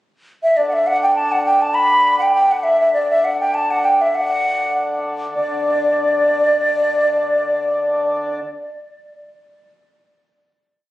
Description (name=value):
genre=celtic folk, Celtic reel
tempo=201 BPM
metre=4/4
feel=swing 56% on 8ths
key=D major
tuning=A4 = 441 Hz
part: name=wooden flute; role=melody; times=0.4-8.4 s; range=D5 to B5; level=-15 LUFS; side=equal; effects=tape echo
part: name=mellow accordion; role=drone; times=0.6-8.4 s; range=D3 to D4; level=-25 LUFS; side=equal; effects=none
room=moderate small room reverb, RT60 0.5 s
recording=recorded on a phone in the room, studio reverb, compression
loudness=-15 LUFS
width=side -16 dB against mid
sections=0.0-0.6 pickup bar; 0.6-5.3 A section; 5.3-7.7 final note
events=none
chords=none